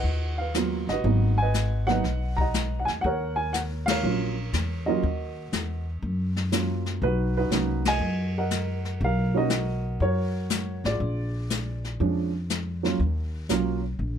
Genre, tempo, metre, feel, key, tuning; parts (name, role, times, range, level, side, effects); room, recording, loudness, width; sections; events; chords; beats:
jazz piano trio; 120 BPM; 4/4; swing 68% on 8ths; Eb minor; A4 = 440 Hz
dark upright piano; melody; 0.0-13.8 s; F3 to Bb5; -27 LUFS; right 3 dB
upright bass; bass; 0.0-14.2 s; G1 to Gb2; -27 LUFS; left 1 dB
jazz brush drum kit; drums; 0.1-14.2 s; brushed snare drum, hi-hat, kick drum, ride cymbal, snare drum; -31 LUFS; left 4 dB
little or no reverb; -24 LUFS; side -8 dB against mid
0.0-14.2 A section
band accent 3.8, 7.8
0.0 Abm7; 3.0 Ebm7; 7.0 Bmaj7; 11.0 Bb7#9; 13.0 Ebm7
0.05 0.55 | 1.04 1.54 2.04 2.54 | 3.04 3.54 4.03 4.53 | 5.03 5.53 6.03 6.52 | 7.02 7.52 8.02 8.51 | 9.01 9.51 10.01 10.50 | 11.00 11.50 11.99 12.49 | 12.99 13.49 13.98